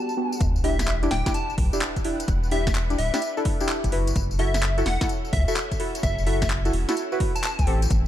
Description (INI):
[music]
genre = UK garage, two-step garage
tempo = 128 BPM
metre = 4/4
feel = swing 65% on 16ths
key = E minor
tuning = A4 = 440 Hz
[part]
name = plucky unison lead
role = melody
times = 0.0-7.7 s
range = E5 to A5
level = -31 LUFS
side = equal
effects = digital delay
[part]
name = soft string machine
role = sustained chords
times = 0.0-8.1 s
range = G3 to F#5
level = -38 LUFS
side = equal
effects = phaser, ensemble chorus, sidechain pumping
[part]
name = deep mellow chord stab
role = stabs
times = 0.0-7.8 s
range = B3 to B4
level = -28 LUFS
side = equal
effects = chorus, digital delay
[part]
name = garage drum kit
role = drums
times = 0.1-8.0 s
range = handclaps, hi-hat, snare drum, tambourine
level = -31 LUFS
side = equal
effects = none
[part]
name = saturated sub bass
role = bass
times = 0.4-8.1 s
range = D1 to C#2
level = -24 LUFS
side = equal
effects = none
[part]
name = electronic kick drum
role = drums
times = 0.4-8.0 s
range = none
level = -27 LUFS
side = equal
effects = none
[part]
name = sub drop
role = sound effects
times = 0.4-2.3 s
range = none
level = -31 LUFS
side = equal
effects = none
[sound]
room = light reverb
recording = dark, warm production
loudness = -21 LUFS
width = side -12 dB against mid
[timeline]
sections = 0.4-8.1 A section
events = drop 0.4-8.1; impact 0.4-2.3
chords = 0.4 Em7; 3.9 F#m7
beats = | 0.41 0.88 1.34 1.81 | 2.28 2.75 3.22 3.69 | 4.16 4.62 5.09 5.56 | 6.03 6.50 6.97 7.44 | 7.91